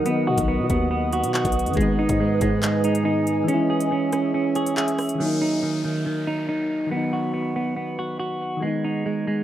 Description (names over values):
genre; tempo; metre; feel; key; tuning
hip hop, drill; 140 BPM; 4/4; half-time; Eb phrygian; A4 = 440 Hz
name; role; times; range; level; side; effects
soft electric-piano-like synth keys; accompaniment; 0.0-9.4 s; D#3 to Fb5; -27 LUFS; left 3 dB; chorus, low-pass filter
ethereal airy pad; sustained chords; 0.0-5.2 s; B4 to Fb6; -29 LUFS; right 1 dB; ensemble chorus, built-in reverb
clean electric guitar; arpeggios; 0.0-9.4 s; Eb3 to Ab4; -23 LUFS; right 3 dB; wide subtle chorus, low-pass filter, tape echo
drill drum kit; drums; 0.1-5.2 s; handclaps, hi-hat, kick drum, rim click; -27 LUFS; left 1 dB; none
growling 808-style bass; bass; 0.3-3.4 s; Ab1 to B2; -26 LUFS; left 1 dB; none
downlifter; sound effects; 5.2-8.6 s; none; -37 LUFS; left 2 dB; none
room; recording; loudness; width
digital ambience; rough home demo mix; -20 LUFS; side -12 dB against mid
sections
0.0-5.2 A section; 5.2-9.4 B section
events
kick muted 3.5-5.2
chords
0.1 B; 1.8 Abm; 3.5 Dbm; 5.2 Ebm; 6.9 B; 8.6 Abm